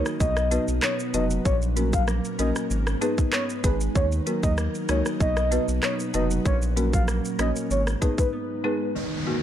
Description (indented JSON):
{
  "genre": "dancehall",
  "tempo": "96 BPM",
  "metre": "4/4",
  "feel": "straight",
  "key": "unclear",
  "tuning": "A4 = 441 Hz",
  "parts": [
    { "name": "folk marimba with medium mallets", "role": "accompaniment", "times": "0.0-9.4 s", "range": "Eb3 to Db5", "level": "-30 LUFS", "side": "left 1 dB", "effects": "none" },
    { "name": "ethereal airy pad", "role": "sustained chords", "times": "0.0-9.4 s", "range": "Gb3 to B4", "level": "-34 LUFS", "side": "equal", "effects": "ensemble chorus, built-in reverb, sidechain pumping" },
    { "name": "mellow electric guitar", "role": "arpeggios", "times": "0.0-9.4 s", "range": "Ab2 to Eb4", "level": "-31 LUFS", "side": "right 1 dB", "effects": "none" },
    { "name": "saturated sub bass", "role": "bass", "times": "0.0-8.0 s", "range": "F1 to Eb2", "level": "-26 LUFS", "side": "equal", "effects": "none" },
    { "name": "island pop drum kit", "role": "drums", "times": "0.1-8.3 s", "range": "handclaps, hi-hat, kick drum, rim click, shaker", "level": "-26 LUFS", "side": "equal", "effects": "none" },
    { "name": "soft octave-layered synth lead", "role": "melody", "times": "0.2-8.3 s", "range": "Cb5 to F5", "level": "-29 LUFS", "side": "equal", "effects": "chorus, phaser, tape echo" },
    { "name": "downlifter", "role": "sound effects", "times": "9.0-9.4 s", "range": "none", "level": "-30 LUFS", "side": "left 3 dB", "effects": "none" }
  ],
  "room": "light reverb",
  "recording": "none",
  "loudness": "-22 LUFS",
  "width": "side -10 dB against mid",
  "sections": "0.0-9.0 A section",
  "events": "break 8.3-9.0",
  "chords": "0.2 B; 1.5 Gb/Bb; 2.7 Abm; 4.0 Ebm; 5.2 B; 6.5 Gb/Bb; 7.7 Abm"
}